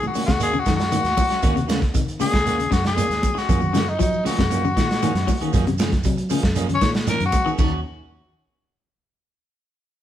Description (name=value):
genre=afrobeat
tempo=117 BPM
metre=4/4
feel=straight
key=Eb dorian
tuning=A4 = 442 Hz
part: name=growling tenor saxophone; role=melody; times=0.0-7.5 s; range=Eb4 to Db5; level=-23 LUFS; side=left 3 dB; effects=none
part: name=electric guitar at the edge of break-up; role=arpeggios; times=0.0-7.7 s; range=C3 to Gb3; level=-27 LUFS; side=left 6 dB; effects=tremolo
part: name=clean electric guitar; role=stabs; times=0.0-7.8 s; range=F3 to Ab4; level=-30 LUFS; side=right 6 dB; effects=none
part: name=fingered electric bass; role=bass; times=0.0-7.8 s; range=Eb2 to Gb3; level=-26 LUFS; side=equal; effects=none
part: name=congas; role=percussion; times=0.0-7.7 s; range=none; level=-29 LUFS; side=right 3 dB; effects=none
part: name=shekere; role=percussion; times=0.0-7.7 s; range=none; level=-32 LUFS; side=right 5 dB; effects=none
part: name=crunchy breakbeat drum kit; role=drums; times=0.2-7.7 s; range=crash cymbal, hi-hat, kick drum, snare drum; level=-23 LUFS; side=right 1 dB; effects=none
room=moderate stone room reverb, RT60 1.1 s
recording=band playing live in one room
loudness=-18 LUFS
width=side -11 dB against mid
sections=0.0-7.6 A section; 7.6-9.6 B section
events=tenor saxophone solo 0.0-7.6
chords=0.0 Ebm7; 3.5 Gbmaj9; 7.6 Ebm7